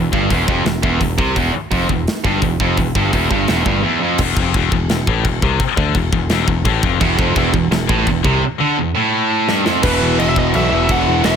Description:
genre	heavy metal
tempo	170 BPM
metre	4/4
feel	straight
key	E minor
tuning	A4 = 440 Hz
part	scooped high-gain guitar	riff	0.0-11.4 s	E2 to E3	-19 LUFS	left 12 dB	distortion
part	tight distorted guitar	riff	0.0-4.2, 7.0-11.4 s	E2 to E3	-18 LUFS	right 12 dB	distortion
part	modern bright picked electric bass	bass	0.0-11.4 s	E1 to D2	-20 LUFS	equal	none
part	tight metal drum kit	drums	0.1-11.3 s	china cymbal, crash cymbal, hi-hat, kick drum, snare drum	-20 LUFS	equal	none
part	high-gain lead guitar	melody	9.8-11.4 s	B4 to F#5	-19 LUFS	left 2 dB	distortion, ping-pong delay
room	small room ambience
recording	none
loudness	-14 LUFS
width	side -7 dB against mid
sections	0.0-4.2 A section; 4.2-9.8 B section; 9.8-11.4 C section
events	drum fill 9.5-9.8; half time 9.8-11.4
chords	0.0 Em; 4.2 N.C.; 9.8 E5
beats	0.30 0.66 1.01 | 1.36 1.72 2.07 2.42 | 2.78 3.13 3.48 3.84 | 4.19 4.54 4.90 5.25 | 5.60 5.95 6.31 6.66 | 7.01 7.37 7.72 8.07 | 8.42 8.78 9.13 9.48 | 9.84 10.19 10.54 10.89 | 11.25

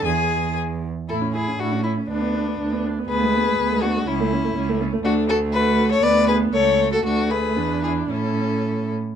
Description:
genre	quick classical-period movement for string quartet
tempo	110-124 BPM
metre	2/4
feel	rubato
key	A major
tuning	A4 = 441 Hz
part	rich violin	melody	0.0-8.9 s	B3 to G#5	-28 LUFS	left 8 dB	none
part	rich violin	second line	0.0-8.9 s	D4 to D5	-23 LUFS	left 4 dB	none
part	rich viola	accompaniment	0.0-9.0 s	G#3 to G#4	-26 LUFS	right 4 dB	none
part	clear cello	bass	0.0-9.0 s	C#2 to A2	-24 LUFS	right 3 dB	none
room	light reverb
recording	dark, warm production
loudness	-19 LUFS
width	side -8 dB against mid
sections	0.0-1.1 A section; 1.1-9.2 B section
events	none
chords	0.1 E; 1.1 A; 2.1 Bm/D; 3.1 Bm6/D; 4.1 A/C#; 5.0 D6; 6.0 G#dim/D (rootless); 6.5 A/C#; 7.0 D; 7.6 E7; 8.1 A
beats	| 0.05 0.57 | 1.10 1.60 | 2.10 2.60 | 3.09 3.58 | 4.07 4.55 | 5.04 5.54 | 6.03 6.54 | 7.05 7.57 | 8.10 8.64

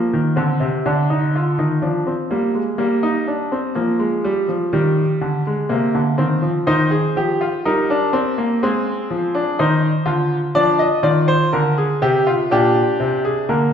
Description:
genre	classical, baroque-style 3-part fugue for grand piano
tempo	62 BPM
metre	4/4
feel	straight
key	Ab major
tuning	A4 = 440 Hz
part	clear concert grand piano	solo	0.0-13.7 s	Bb2 to Eb5	-16 LUFS	equal	none
room	wet recital hall reverb, RT60 1.6 s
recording	heard from further back in the room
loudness	-16 LUFS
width	side -8 dB against mid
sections	0.0-13.7 A section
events	none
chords	0.0 Ab (rootless); 0.8 Dm7b5; 2.8 Gm; 4.7 Cm7; 6.7 Eb; 8.6 Ab; 10.6 Dm; 12.5 Gm/Bb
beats	0.85 1.83 | 2.80 3.77 4.74 5.71 | 6.68 7.65 8.62 9.59 | 10.56 11.53 12.50 13.48

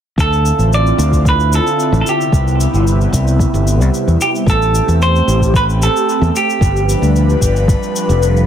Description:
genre	sunset chillout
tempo	112 BPM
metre	4/4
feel	straight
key	D dorian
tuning	A4 = 440 Hz
part	semi-hollow electric guitar	melody	0.2-7.1 s	G4 to D5	-17 LUFS	right 3 dB	ping-pong delay
part	airy breathy pad	sustained chords	0.2-8.5 s	C3 to B4	-18 LUFS	equal	chorus, phaser
part	modern bright fingered electric bass	bass	0.2-8.5 s	F1 to E2	-13 LUFS	equal	none
part	electronic kick drum	drums	0.2-7.8 s	none	-16 LUFS	equal	none
part	shaker	drums	0.2-8.5 s	none	-27 LUFS	left 3 dB	none
room	light reverb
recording	heavily compressed radio sound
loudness	-11 LUFS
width	side -9 dB against mid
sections	0.2-8.5 A section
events	none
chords	0.2 Dm9; 2.1 Cmaj7; 4.5 Am7; 6.6 G7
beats	| 0.18 0.72 1.26 1.79 | 2.33 2.86 3.40 3.93 | 4.47 5.01 5.54 6.08 | 6.61 7.15 7.68 8.22

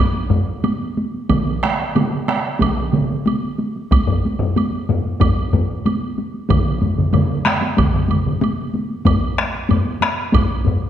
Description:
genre	japanese traditional, taiko drum ensemble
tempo	93 BPM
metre	4/4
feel	straight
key	none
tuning	none
part	taiko ensemble	percussion	0.1-10.9 s	none	-21 LUFS	equal	none
part	taiko ensemble	percussion	0.3-10.8 s	none	-19 LUFS	left 2 dB	none
part	woodblock	percussion	0.6-10.5 s	none	-29 LUFS	right 6 dB	none
part	taiko ensemble	percussion	1.3-8.4 s	none	-21 LUFS	right 4 dB	none
part	taiko ensemble	percussion	1.3-10.5 s	none	-21 LUFS	right 1 dB	none
room	wet recital hall reverb, RT60 1.6 s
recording	none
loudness	-16 LUFS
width	side -10 dB against mid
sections	0.0-10.9 A section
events	speeding up 0.0-10.9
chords	none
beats	0.64 | 1.30 1.96 2.61 3.26 | 3.92 4.57 5.21 5.86 | 6.51 7.15 7.79 8.44 | 9.08 9.71 10.35

